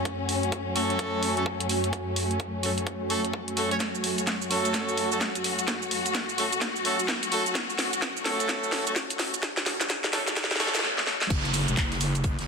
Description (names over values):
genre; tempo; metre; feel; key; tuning
bass house; 128 BPM; 4/4; swing 62% on 16ths; F# minor; A4 = 440 Hz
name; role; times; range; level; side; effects
warm studio string section; sustained chords; 0.0-11.3 s; F#2 to F#4; -31 LUFS; left 3 dB; vintage 12-bit sampler grit, sidechain pumping
deep dark ambient pad; texture; 0.0-12.5 s; F#4 to G#5; -35 LUFS; right 2 dB; chorus, built-in reverb, sidechain pumping
electronic kick drum; drums; 0.1-12.4 s; none; -32 LUFS; equal; high-pass filter on kick, high-pass filter on room
garage drum kit; drums; 0.1-12.5 s; crash cymbal, handclaps, hi-hat, shaker, snare drum; -28 LUFS; equal; none
bright horn section; stabs; 0.8-10.7 s; A3 to C#5; -31 LUFS; right 1 dB; sidechain pumping, ping-pong delay
wobble bass; bass; 11.3-12.5 s; E1 to F#1; -28 LUFS; equal; chorus, tube saturation, sidechain pumping
soft-mallet drum kit; drums; 11.3-12.5 s; hi-hat, snare drum; -41 LUFS; right 3 dB; none
downlifter; sound effects; 11.3-12.5 s; none; -32 LUFS; equal; none
room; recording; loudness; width
moderate plate reverb, RT60 2.2 s; dense, heavily limited modern master, high-pass filter; -24 LUFS; side -5 dB against mid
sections
0.0-11.3 A section; 11.3-12.5 B section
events
build-up 0.0-11.3; filter sweep 0.0-11.3; drum fill 3.8-10.8, 10.8-11.3; drop 11.3-12.5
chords
0.0 F#m; 11.3 F#5